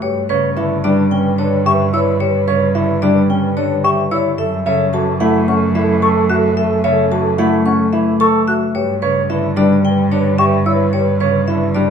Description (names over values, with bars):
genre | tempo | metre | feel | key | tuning
classical, minimalist pattern music | 110 BPM | 4/4 | straight | G lydian | A4 = 440 Hz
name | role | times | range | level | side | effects
vibraphone with medium hard mallets | melody | 0.0-11.9 s | B4 to C#6 | -22 LUFS | left 11 dB | none
mellow French horn | second line | 0.0-11.9 s | A4 to B4 | -23 LUFS | right 5 dB | none
Celtic harp | accompaniment | 0.0-11.9 s | C#3 to A3 | -18 LUFS | left 3 dB | none
dark concert grand piano | arpeggios | 0.0-11.9 s | C#4 to E5 | -19 LUFS | right 4 dB | none
rich cello | bass | 0.0-11.9 s | F#2 to G2 | -20 LUFS | right 4 dB | none
mellow hollow concert flute | arpeggios | 1.1-10.7 s | F#5 to F#6 | -19 LUFS | left 3 dB | none
room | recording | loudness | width
wet large studio reverb, RT60 1.4 s | none | -13 LUFS | side -7 dB against mid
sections
0.0-11.9 A section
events
none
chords
0.0 G6; 4.4 F#m; 8.8 G6